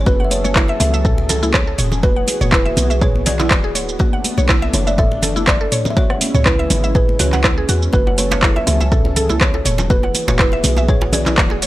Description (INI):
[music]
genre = afro house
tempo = 122 BPM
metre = 4/4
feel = swing 54% on 16ths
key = F# minor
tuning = A4 = 440 Hz
[part]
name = kalimba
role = melody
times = 0.0-11.6 s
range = B4 to E5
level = -23 LUFS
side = right 1 dB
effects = analog delay
[part]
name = warm analog pad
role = sustained chords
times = 0.0-11.7 s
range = C#3 to A4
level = -26 LUFS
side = equal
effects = chorus, sidechain pumping
[part]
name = warm 808-style bass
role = bass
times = 0.0-11.7 s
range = D1 to E2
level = -20 LUFS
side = equal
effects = sidechain pumping
[part]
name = mallet-like synth pluck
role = arpeggios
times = 0.1-11.7 s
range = E4 to F#5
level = -23 LUFS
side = equal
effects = chorus, sidechain pumping, analog delay
[part]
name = afro-pop drum kit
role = drums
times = 0.1-11.7 s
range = handclaps, hi-hat, rim click, shaker, toms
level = -19 LUFS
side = right 1 dB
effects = studio reverb
[part]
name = electronic kick drum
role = drums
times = 0.1-11.5 s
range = none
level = -16 LUFS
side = equal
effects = overdrive, studio reverb
[part]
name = congas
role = percussion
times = 0.1-11.7 s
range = none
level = -24 LUFS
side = left 1 dB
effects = none
[part]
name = djembe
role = percussion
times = 8.1-11.6 s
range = none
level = -25 LUFS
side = right 2 dB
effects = none
[sound]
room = light reverb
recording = dry, gritty hardware recording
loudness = -13 LUFS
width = side -16 dB against mid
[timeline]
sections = 0.0-11.7 A section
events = none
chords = 0.1 F#m7; 2.0 E7; 4.0 Bm7; 6.0 C#m7; 7.9 F#m7; 9.9 E7